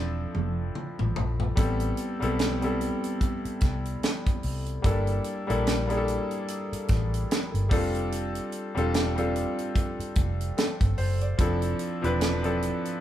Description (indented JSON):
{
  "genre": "lush 1970s-style soul",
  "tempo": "73 BPM",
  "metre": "4/4",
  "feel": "swing 58% on 16ths",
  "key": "A minor",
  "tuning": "A4 = 440 Hz",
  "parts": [
    { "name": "clear concert grand piano", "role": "accompaniment", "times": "0.0-13.0 s", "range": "F3 to D5", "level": "-29 LUFS", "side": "left 1 dB", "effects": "none" },
    { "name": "vintage muted fingered electric bass", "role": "bass", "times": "0.0-12.7 s", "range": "E1 to C2", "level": "-29 LUFS", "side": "equal", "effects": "none" },
    { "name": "tight funk drum kit", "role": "drums", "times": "0.3-13.0 s", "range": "hi-hat, kick drum, snare drum, toms", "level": "-28 LUFS", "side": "equal", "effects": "none" }
  ],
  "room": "light reverb",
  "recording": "band playing live in one room",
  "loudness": "-25 LUFS",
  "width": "side -12 dB against mid",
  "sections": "0.0-1.6 A section; 1.6-13.0 B section",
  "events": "drum fill 0.0-1.6",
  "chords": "0.0 Dm9; 1.6 Am9; 4.8 Gm69; 7.7 F6; 11.4 Dm9",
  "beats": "0.75 | 1.57 2.39 3.21 4.03 | 4.85 5.66 6.48 7.30 | 8.12 8.94 9.75 10.57 | 11.39 12.21"
}